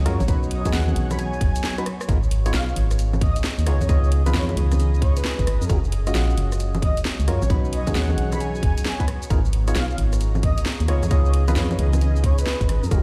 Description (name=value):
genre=UK garage, two-step garage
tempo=133 BPM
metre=4/4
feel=swing 65% on 16ths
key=G# dorian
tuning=A4 = 440 Hz
part: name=percussive organ stab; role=stabs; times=0.0-13.0 s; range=G#3 to D#5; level=-32 LUFS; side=equal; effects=lush chorus, cassette tape, digital delay
part: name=organ-like FM bass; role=bass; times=0.0-13.0 s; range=F#1 to F#2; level=-23 LUFS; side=equal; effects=none
part: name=granular cloud pad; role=texture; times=0.0-13.0 s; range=F#3 to A#5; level=-37 LUFS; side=equal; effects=built-in reverb, sidechain pumping
part: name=breathy flute-like synth lead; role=melody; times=0.1-13.0 s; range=B4 to B5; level=-35 LUFS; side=equal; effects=tremolo, ensemble chorus, digital delay
part: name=garage drum kit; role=drums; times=0.1-13.0 s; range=congas, hi-hat, rim click, shaker, snare drum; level=-31 LUFS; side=equal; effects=overdrive, small room ambience
part: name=electronic kick drum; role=drums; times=0.3-13.0 s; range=none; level=-23 LUFS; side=equal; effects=overdrive, small room ambience
room=little or no reverb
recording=played on a big sound system in a bare room, stone room reverb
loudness=-21 LUFS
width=mono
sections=0.0-13.0 A section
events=break 1.6-2.1; drum fill 1.8-2.1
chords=0.3 B; 2.1 G#m69; 5.7 F#maj9; 7.5 B; 9.3 G#m69